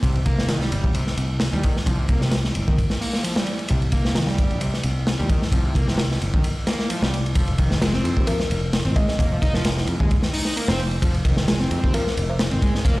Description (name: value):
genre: breakbeat, breaks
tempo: 131 BPM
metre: 4/4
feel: straight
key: F minor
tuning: A4 = 438 Hz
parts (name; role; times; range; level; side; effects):
- overdriven synth lead; riff; 0.0-13.0 s; C3 to Eb4; -26 LUFS; equal; distortion, tube saturation, tape echo
- picked electric bass; bass; 0.0-13.0 s; F1 to F2; -23 LUFS; equal; none
- crunchy breakbeat drum kit; drums; 0.0-13.0 s; hi-hat, kick drum, ride cymbal, snare drum; -22 LUFS; equal; none
- kalimba; melody; 8.3-12.8 s; Bb4 to Eb5; -30 LUFS; left 1 dB; small speaker sound, tape echo
room: small room ambience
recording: played on a big sound system in a bare room, large studio reverb, lossy compression artefacts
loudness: -19 LUFS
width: side -20 dB against mid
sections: 0.0-7.4 A section; 7.4-13.0 B section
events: break 6.4-7.4; drop 7.4-13.0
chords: 0.0 C7(no3); 7.4 F7(no3)